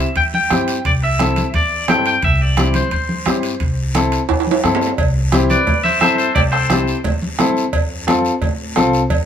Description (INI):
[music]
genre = latin, cumbia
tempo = 174 BPM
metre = 4/4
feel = straight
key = C major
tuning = A4 = 441 Hz
[part]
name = twangy electric guitar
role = melody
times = 0.0-7.0 s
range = G4 to G5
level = -18 LUFS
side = left 1 dB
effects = spring reverb
[part]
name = clear upright piano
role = accompaniment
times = 0.0-9.0 s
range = C4 to A4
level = -19 LUFS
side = left 2 dB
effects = none
[part]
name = upright bass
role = bass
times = 0.0-9.3 s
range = C2 to A2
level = -21 LUFS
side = equal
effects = none
[part]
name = bombo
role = percussion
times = 0.2-9.3 s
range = none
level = -21 LUFS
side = right 1 dB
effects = none
[part]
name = congas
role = percussion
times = 0.2-9.3 s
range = none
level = -24 LUFS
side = right 1 dB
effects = none
[part]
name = guiro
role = percussion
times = 0.2-9.3 s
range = none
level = -30 LUFS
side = left 4 dB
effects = none
[part]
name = timbales and cowbell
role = percussion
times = 0.2-9.3 s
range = none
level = -22 LUFS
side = right 6 dB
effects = none
[sound]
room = light reverb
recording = minimal, uncompressed stereo recording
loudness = -14 LUFS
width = side -8 dB against mid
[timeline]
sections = 0.0-5.0 A section; 5.0-9.3 B section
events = drum fill 4.3-5.0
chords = 0.0 C; 7.7 F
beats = 0.16 0.51 | 0.85 1.20 1.54 1.89 | 2.23 2.57 2.92 3.26 | 3.61 3.95 4.30 4.64 | 4.98 5.33 5.67 6.02 | 6.36 6.70 7.05 7.39 | 7.73 8.08 8.42 8.77 | 9.11